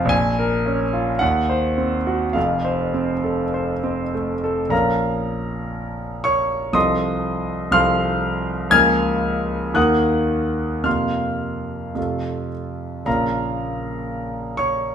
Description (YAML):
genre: classical, romantic character piece for solo piano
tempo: 49-61 BPM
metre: 2/4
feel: rubato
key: Bb minor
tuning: A4 = 439 Hz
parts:
  - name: clear concert grand piano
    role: solo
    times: 0.0-14.9 s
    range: F1 to Ab6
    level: -19 LUFS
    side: equal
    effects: none
room: wet stone room reverb, RT60 0.9 s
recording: minimal, uncompressed stereo recording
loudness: -19 LUFS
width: side -8 dB against mid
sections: 0.0-4.7 A section; 4.7-14.9 B section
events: none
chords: 0.1 Bbm; 1.2 Cdim/Eb; 2.4 F; 4.7 Bbm; 6.8 F7/C; 8.7 Bbm/Db; 9.8 Ebm; 10.9 Fsus4; 12.0 F; 13.1 Bbm